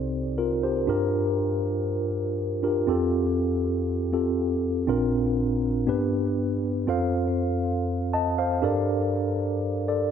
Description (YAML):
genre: pop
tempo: 120 BPM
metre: 4/4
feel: straight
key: unclear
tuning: A4 = 442 Hz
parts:
  - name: mellow tine electric piano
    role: solo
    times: 0.0-10.1 s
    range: Bb1 to A5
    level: -23 LUFS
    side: equal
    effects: medium stereo tremolo, ping-pong delay
room: moderate lush hall reverb, RT60 2.6 s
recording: none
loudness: -23 LUFS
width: side -8 dB against mid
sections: 0.0-6.9 A section; 6.9-10.1 B section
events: none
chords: 0.0 Cm; 0.9 Gm7; 2.9 Fadd9; 4.9 Bbadd9; 5.9 G; 6.9 F; 8.6 Gmadd9